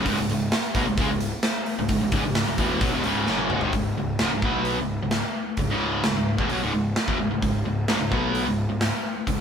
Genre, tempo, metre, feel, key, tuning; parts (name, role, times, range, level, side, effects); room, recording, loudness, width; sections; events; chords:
hard rock; 130 BPM; 4/4; straight; C# minor; A4 = 440 Hz
cranked stack guitar; riff; 0.0-9.4 s; C#2 to B3; -24 LUFS; equal; overdrive
fuzz picked electric bass; bass; 0.0-9.4 s; C#1 to C#2; -32 LUFS; equal; overdrive
big rock drum kit; drums; 0.1-9.4 s; hi-hat, kick drum, snare drum, toms; -26 LUFS; equal
light reverb; band playing live in one room; -22 LUFS; side -7 dB against mid
0.0-3.7 A section; 3.7-9.4 B section
drum fill 3.3-3.7
0.0 C#m; 3.7 C#5